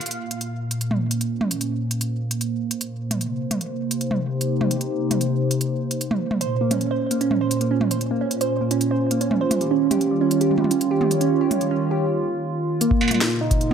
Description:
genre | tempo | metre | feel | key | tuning
IDM | 150 BPM | 4/4 | straight | unclear | A4 = 440 Hz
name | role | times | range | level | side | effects
hollow soft pad | sustained chords | 0.0-13.7 s | Bb2 to Db5 | -24 LUFS | equal | chorus, sidechain pumping
industrial drum kit | drums | 0.0-13.7 s | hi-hat, snare drum, struck metal, toms | -25 LUFS | right 1 dB | overdrive
harp-like synth pluck | arpeggios | 6.4-12.0 s | G3 to C5 | -21 LUFS | right 5 dB | chorus, phaser, tape echo
soft struck synth lead | melody | 12.8-13.7 s | Bb3 to Eb4 | -22 LUFS | left 2 dB | chorus
electronic kick drum | drums | 12.9-13.6 s | none | -21 LUFS | equal | none
room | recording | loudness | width
light reverb, digital ambience | none | -20 LUFS | side -7 dB against mid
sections
0.0-12.8 A section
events
filter sweep on analog synth pad 0.0-12.8; break 12.0-12.8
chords
0.0 Bbmadd9; 3.2 Cm7; 6.4 Bbmadd9; 9.6 Eb9; 12.8 Bbmadd9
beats
| 0.01 0.41 0.81 1.21 | 1.61 2.01 2.41 2.81 | 3.21 3.61 4.01 4.41 | 4.81 5.21 5.61 6.01 | 6.41 6.81 7.21 7.61 | 8.01 8.41 8.81 9.21 | 9.61 10.01 10.41 10.81 | 11.21 11.61 12.01 12.41 | 12.81 13.21 13.61

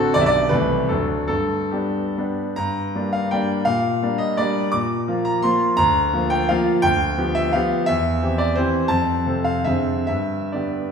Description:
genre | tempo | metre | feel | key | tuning
classical, romantic triple-time dance for piano with dotted rhythms | 128-183 BPM | 3/4 | rubato | G minor | A4 = 439 Hz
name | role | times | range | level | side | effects
bright concert grand piano | solo | 0.0-10.9 s | B1 to D6 | -18 LUFS | equal | none
room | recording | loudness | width
wet recital hall reverb, RT60 1.4 s | heard from further back in the room | -18 LUFS | side -6 dB against mid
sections
0.0-2.6 A section; 2.6-10.9 B section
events
none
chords
0.2 G/B; 0.5 Am7/C; 0.9 D; 1.3 G; 2.6 Gm; 3.7 Gm/Bb; 4.7 Bb; 5.8 Bb/D; 6.8 G7/D; 7.9 C/E; 8.9 F; 9.7 Dm7b5/F; 10.1 G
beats
| 0.15 0.52 0.90 | 1.29 1.73 2.18 | 2.57 2.95 3.32 | 3.67 4.02 4.38 | 4.73 5.08 5.45 | 5.79 6.14 6.50 | 6.83 7.18 7.54 | 7.87 8.21 8.56 | 8.89 9.25 9.66 | 10.08 10.54

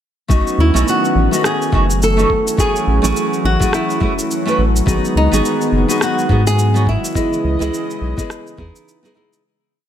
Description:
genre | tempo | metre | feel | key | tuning
sunset chillout | 105 BPM | 4/4 | swing 58% on 16ths | unclear | A4 = 441 Hz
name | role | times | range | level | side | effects
nylon-string guitar | accompaniment | 0.3-9.4 s | A3 to D#5 | -20 LUFS | moving between left 4 dB and right 3 dB | auto-pan, ping-pong delay
lush unison pad | sustained chords | 0.3-9.4 s | C#3 to D#5 | -22 LUFS | equal | chorus
round analog bass | bass | 0.3-8.7 s | F#1 to G#2 | -16 LUFS | equal | none
electronic kick drum | drums | 0.3-8.7 s | none | -19 LUFS | equal | none
electronic shaker and rim click | drums | 0.3-9.4 s | none | -23 LUFS | equal | none
flamenco guitar | melody | 0.6-8.8 s | D#4 to A4 | -20 LUFS | equal | ping-pong delay
room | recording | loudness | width
light reverb, digital ambience | none | -13 LUFS | side -10 dB against mid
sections
0.3-9.4 groove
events
fade-out 6.4-9.4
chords
0.3 B7; 2.3 F#m7/A; 4.9 G#m7; 7.2 C#m9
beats
| 0.30 0.87 1.45 2.02 | 2.59 3.16 3.73 4.30 | 4.87 5.45 6.02 6.59 | 7.16 7.73 8.30 8.87

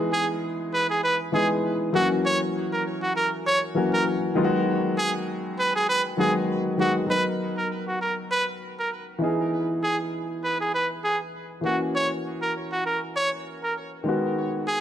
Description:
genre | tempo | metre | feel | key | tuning
afrobeats | 99 BPM | 4/4 | swing 55% on 16ths | B major | A4 = 440 Hz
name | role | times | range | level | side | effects
dark concert grand piano | accompaniment | 0.0-14.8 s | D#3 to A#4 | -26 LUFS | left 1 dB | none
brilliant trumpet | melody | 0.1-14.8 s | F#4 to C#5 | -25 LUFS | right 1 dB | none
room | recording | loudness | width
moderate lush hall reverb, RT60 2.4 s | lossy compression artefacts | -23 LUFS | side -10 dB against mid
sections
0.0-7.1 A section; 7.1-14.8 B section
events
none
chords
0.0 Emaj7; 1.9 F#7; 4.4 G#m7; 7.1 Bmaj7; 9.2 Emaj7; 11.6 F#7; 14.1 G#m7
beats
0.43 1.03 1.64 | 2.24 2.85 3.46 4.06 | 4.67 5.27 5.88 6.49 | 7.09 7.70 8.30 8.91 | 9.52 10.12 10.73 11.34 | 11.94 12.55 13.15 13.76 | 14.37

